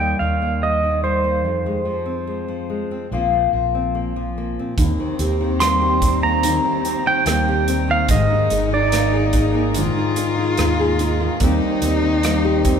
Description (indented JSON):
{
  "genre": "acoustic folk-pop ballad",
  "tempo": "72 BPM",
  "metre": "4/4",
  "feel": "straight",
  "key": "Eb major",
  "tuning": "A4 = 440 Hz",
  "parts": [
    { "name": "pedal steel guitar", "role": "melody", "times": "0.0-10.3 s", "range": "C5 to C6", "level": "-21 LUFS", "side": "right 3 dB", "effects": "none" },
    { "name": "nylon-string guitar", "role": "accompaniment", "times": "0.0-12.8 s", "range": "Eb2 to Ab4", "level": "-23 LUFS", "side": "left 5 dB", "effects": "none" },
    { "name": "fretless electric bass", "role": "bass", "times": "0.0-12.8 s", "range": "Ab1 to F2", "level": "-23 LUFS", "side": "equal", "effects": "none" },
    { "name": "warm cello", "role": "second line", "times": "4.8-12.8 s", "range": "C4 to F4", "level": "-24 LUFS", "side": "left 3 dB", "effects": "none" },
    { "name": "warm chamber string section", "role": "sustained chords", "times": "4.8-12.8 s", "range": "Eb4 to Bb5", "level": "-30 LUFS", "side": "left 1 dB", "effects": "none" },
    { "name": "felt-muted upright piano", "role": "arpeggios", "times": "4.8-12.8 s", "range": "Eb3 to Ab4", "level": "-25 LUFS", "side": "right 5 dB", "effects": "none" },
    { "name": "natural country drum kit", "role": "drums", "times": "4.8-12.8 s", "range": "hi-hat, kick drum, rim click", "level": "-23 LUFS", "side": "right 1 dB", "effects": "none" }
  ],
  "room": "wet recital hall reverb, RT60 1.8 s",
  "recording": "recorded in a church or concert hall",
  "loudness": "-17 LUFS",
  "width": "side -7 dB against mid",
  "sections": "0.0-4.8 A section; 4.8-12.8 B section",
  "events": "none",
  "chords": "0.0 Ebadd9; 1.4 Fm7; 3.1 Bbsus2; 4.8 Eb6; 8.1 Absus2; 11.4 Eb6"
}